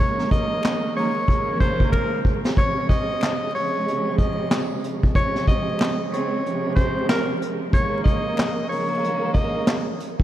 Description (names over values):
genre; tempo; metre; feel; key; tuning
hip hop, boom-bap hip-hop; 93 BPM; 4/4; swing 61% on 16ths; Bb minor; A4 = 440 Hz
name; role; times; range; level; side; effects
breathy tenor saxophone; melody; 0.0-9.8 s; Bb4 to Eb5; -25 LUFS; left 1 dB; high-pass filter, low-pass filter, tape echo
warm studio string section; accompaniment; 0.0-10.2 s; Eb2 to C4; -26 LUFS; right 2 dB; cassette tape, high-pass filter, low-pass filter
vintage brush drum kit; drums; 0.2-10.2 s; handclaps, hi-hat, kick drum, snare drum; -22 LUFS; equal; none
finger snaps; percussion; 0.6-9.9 s; none; -44 LUFS; left 8 dB; none
room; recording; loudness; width
moderate plate reverb, RT60 3.5 s; dreamy mix soaked in reverb, vinyl crackle; -20 LUFS; side -13 dB against mid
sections
0.0-10.2 A section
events
drum fill 1.9-2.6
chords
0.0 Eb7sus4; 2.6 Bbm11/C (rootless); 7.7 Eb7sus4